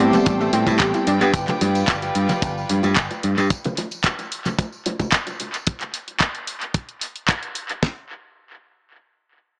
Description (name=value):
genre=nu-disco, nu disco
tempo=111 BPM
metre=4/4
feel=straight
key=unclear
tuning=A4 = 441 Hz
part: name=tine electric piano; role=accompaniment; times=0.0-1.1 s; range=G3 to G4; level=-21 LUFS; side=equal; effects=analog chorus, sidechain pumping, tape echo
part: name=clear studio violin section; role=sustained chords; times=0.0-3.5 s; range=G3 to C6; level=-26 LUFS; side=equal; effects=sidechain pumping
part: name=analog pluck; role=arpeggios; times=0.0-1.2 s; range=G3 to G4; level=-25 LUFS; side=equal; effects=chorus, sidechain pumping, tape echo
part: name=picked electric bass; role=bass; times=0.0-3.5 s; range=G1 to A2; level=-20 LUFS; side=equal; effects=none
part: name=house drum kit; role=drums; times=0.1-7.8 s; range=handclaps, hi-hat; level=-24 LUFS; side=equal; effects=overdrive, tape echo
part: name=congas, tambourine and bongos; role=percussion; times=0.1-5.6 s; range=none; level=-28 LUFS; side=equal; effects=tape echo
part: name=damped 70s drum kit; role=drums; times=0.3-8.0 s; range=kick drum, snare drum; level=-20 LUFS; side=equal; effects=none
room=moderate spring reverb, RT60 2.2 s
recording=echo-heavy mix, small speaker sound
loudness=-19 LUFS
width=side -40 dB against mid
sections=0.0-7.8 A section; 7.8-9.6 B section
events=drop 0.0-7.8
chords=0.0 Am7; 1.1 G7; 3.5 N.C.